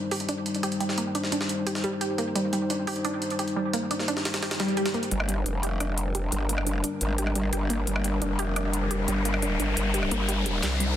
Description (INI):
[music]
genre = dark technical drum and bass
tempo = 174 BPM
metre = 4/4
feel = straight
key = G minor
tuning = A4 = 440 Hz
[part]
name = dark analog pad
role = sustained chords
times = 0.0-11.0 s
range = G3 to C5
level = -30 LUFS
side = left 2 dB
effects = chorus
[part]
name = wide unison pluck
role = arpeggios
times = 0.0-10.9 s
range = G3 to G4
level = -31 LUFS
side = right 3 dB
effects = phaser, dub echo
[part]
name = jungle sampler-style drum kit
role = drums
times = 0.1-5.1 s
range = hi-hat, snare drum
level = -31 LUFS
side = right 1 dB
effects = high-pass filter on hats, studio reverb, high-pass filter on snare, high-pass filter on room
[part]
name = swell and riser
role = sound effects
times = 4.5-11.0 s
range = none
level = -34 LUFS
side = left 3 dB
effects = none
[part]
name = growl bass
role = bass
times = 5.1-11.0 s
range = F1 to C2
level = -27 LUFS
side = equal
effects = chorus, overdrive
[part]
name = drum and bass drum kit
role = drums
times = 5.1-10.9 s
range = hi-hat, rim click, snare drum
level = -32 LUFS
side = left 1 dB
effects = high-pass filter on hats, low-pass filter on hats, studio reverb, soft clipping on snare, high-pass filter on snare, low-pass filter on snare
[sound]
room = light reverb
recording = dense, heavily limited modern master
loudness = -25 LUFS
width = side -11 dB against mid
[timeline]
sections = 0.0-5.1 A section; 5.1-11.0 B section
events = swell 4.5-5.1; build-up 5.1-11.0; riser 5.1-11.0; drum fill 10.6-11.0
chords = 0.0 Cm; 5.1 Gm